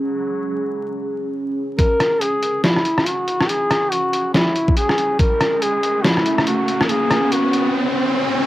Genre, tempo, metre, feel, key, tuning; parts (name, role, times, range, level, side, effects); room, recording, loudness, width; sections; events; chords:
deep dubstep; 141 BPM; 4/4; swing 59% on 16ths, half-time; C# dorian; A4 = 436 Hz
deep dark ambient pad; sustained chords; 0.0-8.5 s; C#4 to C#5; -25 LUFS; right 1 dB; chorus, built-in reverb
backwards swelling texture; texture; 0.0-1.8 s; E3 to F#3; -38 LUFS; left 1 dB; built-in reverb
warm duduk; melody; 1.8-7.7 s; E4 to A#4; -19 LUFS; left 1 dB; low-pass filter, cassette tape, dub echo
electronic kick drum; drums; 1.8-1.9, 4.7-5.3 s; -16 LUFS; equal; overdrive, cassette tape
trip hop sampler-style drum kit; drums; 1.8-7.6 s; hi-hat, rim click, snare drum; -19 LUFS; equal; cassette tape
riser; sound effects; 3.9-8.5 s; -23 LUFS; equal
wet booth ambience, RT60 0.2 s; home recording on cassette, vinyl crackle; -16 LUFS; side -15 dB against mid
0.0-1.8 A section; 1.8-8.5 B section
build-up 1.8-8.5; riser 3.9-8.5
0.0 C#m; 1.8 N.C.